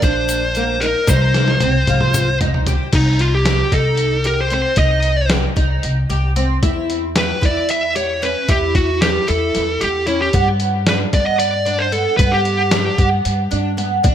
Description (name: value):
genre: progressive instrumental, band music in an uneven meter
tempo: 227 BPM (eighths)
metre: 7/8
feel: straight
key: unclear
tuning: A4 = 440 Hz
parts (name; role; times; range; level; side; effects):
- fuzz lead guitar; melody; 0.0-13.1 s; Eb4 to E5; -19 LUFS; equal; distortion, ping-pong delay
- fingerpicked twelve-string acoustic guitar; arpeggios; 0.0-14.1 s; Bb3 to G4; -22 LUFS; right 1 dB; analog chorus, ping-pong delay
- upright bass; bass; 0.0-14.1 s; Bb1 to G2; -20 LUFS; equal; none
- lo-fi sampler-style drum kit; drums; 0.0-14.1 s; crash cymbal, hi-hat, kick drum, snare drum, toms; -19 LUFS; equal; gated reverb
- egg shaker; percussion; 0.0-2.8 s; none; -30 LUFS; left 6 dB; none
room: light reverb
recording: bright 1980s-style digital production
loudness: -14 LUFS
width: side -10 dB against mid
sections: 0.0-2.9 A section; 2.9-14.1 B section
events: drum fill 1.1-2.9; lead electric guitar solo 2.9-14.1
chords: 0.0 Bb; 1.1 Cm; 6.6 Em; 10.3 G